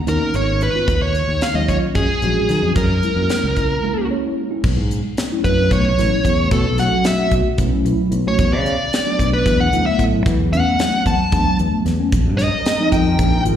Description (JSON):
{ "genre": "electric jazz fusion", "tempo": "224 BPM (eighths)", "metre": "7/8", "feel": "straight", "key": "unclear", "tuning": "A4 = 438 Hz", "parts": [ { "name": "dark smooth lead guitar", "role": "melody", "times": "0.1-13.4 s", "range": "Ab4 to A5", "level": "-20 LUFS", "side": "equal", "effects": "overdrive, slapback echo" }, { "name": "mellow tine electric piano", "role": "accompaniment", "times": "0.1-13.6 s", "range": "E#3 to Db5", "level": "-21 LUFS", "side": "equal", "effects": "medium stereo tremolo, phaser, slapback echo" }, { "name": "fingered electric bass", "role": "bass", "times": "0.1-13.6 s", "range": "Ab1 to E3", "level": "-19 LUFS", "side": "equal", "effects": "none" }, { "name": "tight funk drum kit", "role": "drums", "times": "0.1-13.6 s", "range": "crash cymbal, hi-hat, kick drum, snare drum", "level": "-21 LUFS", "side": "equal", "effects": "none" }, { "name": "analog string pad", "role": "sustained chords", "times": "12.1-13.6 s", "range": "D#3 to A#4", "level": "-28 LUFS", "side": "left 1 dB", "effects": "ensemble chorus" } ], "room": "studio ambience", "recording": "live gig heard through the venue's PA, recital hall reverb", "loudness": "-15 LUFS", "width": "side -9 dB against mid", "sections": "0.0-4.6 A section; 4.6-13.6 B section", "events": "break 3.8-4.6; tine electric piano fill 3.8-4.6; lead electric guitar solo 4.6-13.6", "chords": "0.0 Abmadd9; 0.9 Ebm11; 2.8 Gb9; 4.6 B9sus4; 8.4 E9sus4; 12.1 A#9sus4" }